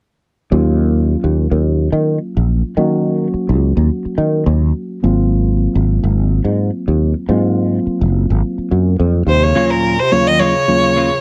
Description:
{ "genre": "jazz", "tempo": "106 BPM", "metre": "4/4", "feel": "swing 54% on 16ths", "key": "Eb dorian", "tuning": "A4 = 437 Hz", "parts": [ { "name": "mellow reed electric piano", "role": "accompaniment", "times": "0.5-11.1 s", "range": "Eb2 to Gb4", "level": "-21 LUFS", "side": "equal", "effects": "none" }, { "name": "sustaining fretless electric bass", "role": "bass", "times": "0.5-9.5 s", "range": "Gb1 to Eb3", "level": "-16 LUFS", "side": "equal", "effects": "analog chorus" }, { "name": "rich violin", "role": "melody", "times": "9.3-11.2 s", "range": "Bb4 to Eb5", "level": "-16 LUFS", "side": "equal", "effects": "none" }, { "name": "breathy bass clarinet", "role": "second line", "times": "9.3-11.2 s", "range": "Bb2 to Eb3", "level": "-25 LUFS", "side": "equal", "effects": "none" }, { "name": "clean electric guitar", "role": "stabs", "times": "9.6-11.2 s", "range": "Gb3 to F4", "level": "-28 LUFS", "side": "equal", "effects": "none" } ], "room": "studio reverb", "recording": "dry, close 1970s-style studio recording", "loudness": "-15 LUFS", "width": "mono", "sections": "0.5-9.5 A section; 9.5-11.2 B section", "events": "none", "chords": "0.5 Ebm9; 5.0 Ab13; 9.5 Ebm9", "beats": "| 0.52 1.08 1.65 2.21 | 2.77 3.34 3.90 4.47 | 5.03 5.60 6.16 6.73 | 7.29 7.86 8.42 8.98 | 9.55 10.11 10.68" }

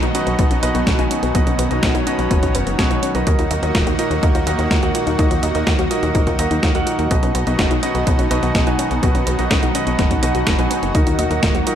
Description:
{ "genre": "italo disco", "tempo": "125 BPM", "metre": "4/4", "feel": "straight", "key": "unclear", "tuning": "A4 = 442 Hz", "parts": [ { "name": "lush unison pad", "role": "sustained chords", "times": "0.0-11.8 s", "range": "Bb2 to Gb4", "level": "-22 LUFS", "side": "equal", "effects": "chorus" }, { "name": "soft round pluck", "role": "arpeggios", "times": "0.0-11.7 s", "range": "Bb3 to Eb5", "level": "-25 LUFS", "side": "left 5 dB", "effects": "chorus, ping-pong delay" }, { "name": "clear concert grand piano", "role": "stabs", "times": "0.0-11.8 s", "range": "B2 to Ab5", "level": "-23 LUFS", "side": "right 2 dB", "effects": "ping-pong delay" }, { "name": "tight sequencer bass", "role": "bass", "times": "0.0-11.6 s", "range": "Eb1 to Eb2", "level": "-22 LUFS", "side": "equal", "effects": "none" }, { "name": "clean 12-bit digital drum machine", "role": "drums", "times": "0.0-11.8 s", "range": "hi-hat, snare drum", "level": "-23 LUFS", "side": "right 1 dB", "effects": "none" }, { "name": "electronic kick drum", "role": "drums", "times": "0.4-11.5 s", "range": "none", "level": "-19 LUFS", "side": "equal", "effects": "none" }, { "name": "swell", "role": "sound effects", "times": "10.3-10.9 s", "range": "none", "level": "-30 LUFS", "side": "right 2 dB", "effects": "none" } ], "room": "light reverb", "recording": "none", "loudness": "-15 LUFS", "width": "side -9 dB against mid", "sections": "0.0-11.8 A section", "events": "swell 10.3-10.9", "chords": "0.0 B; 3.3 Ebm; 7.1 B; 10.9 Ebm", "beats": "0.39 0.87 | 1.35 1.83 2.31 2.79 | 3.27 3.75 4.23 4.71 | 5.19 5.67 6.15 6.63 | 7.11 7.59 8.07 8.55 | 9.03 9.51 9.99 10.47 | 10.95 11.43" }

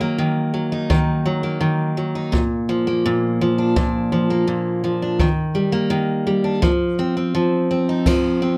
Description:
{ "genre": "acoustic pop", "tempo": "84 BPM", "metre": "4/4", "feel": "straight", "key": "Bb major", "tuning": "A4 = 440 Hz", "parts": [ { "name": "picked steel-string acoustic guitar", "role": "accompaniment", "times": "0.0-8.6 s", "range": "Bb2 to Eb4", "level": "-20 LUFS", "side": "equal", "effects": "none" }, { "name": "jazz brush drum kit", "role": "drums", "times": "0.9-8.2 s", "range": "crash cymbal, kick drum", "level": "-24 LUFS", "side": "equal", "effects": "none" } ], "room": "moderate studio reverb, RT60 0.7 s", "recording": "none", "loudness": "-20 LUFS", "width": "mono", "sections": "0.0-8.1 A section", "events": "none", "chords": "0.0 Ebm; 2.3 Bb; 5.2 Ebmaj7; 6.6 F5", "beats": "0.19 0.90 1.62 | 2.33 3.05 3.77 4.48 | 5.20 5.92 6.63 7.35 | 8.06" }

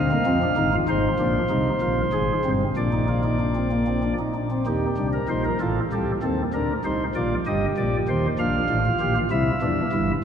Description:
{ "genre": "classical, baroque-style 3-part fugue for pipe organ", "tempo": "64 BPM (dotted quarters)", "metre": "6/8", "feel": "straight", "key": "Eb major", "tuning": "A4 = 443 Hz", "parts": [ { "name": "pipe organ, flutes", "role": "solo", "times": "0.0-10.1 s", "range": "G1 to F5", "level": "-20 LUFS", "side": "equal", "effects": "none" } ], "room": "wet cathedral reverb, RT60 5.8 s", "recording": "recorded in a church or concert hall", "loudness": "-21 LUFS", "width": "side -8 dB against mid", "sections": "0.0-4.7 A section; 4.7-10.2 B section", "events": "none", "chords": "0.0 Ddim; 0.9 Fm/Ab; 2.8 Bb; 4.7 Eb; 5.6 F7/A; 6.5 Bb; 7.5 Eb/G; 8.4 Bb; 9.3 C", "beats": "| 0.88 1.81 | 2.76 3.72 | 4.67 5.61 | 6.54 7.46 | 8.38 9.31" }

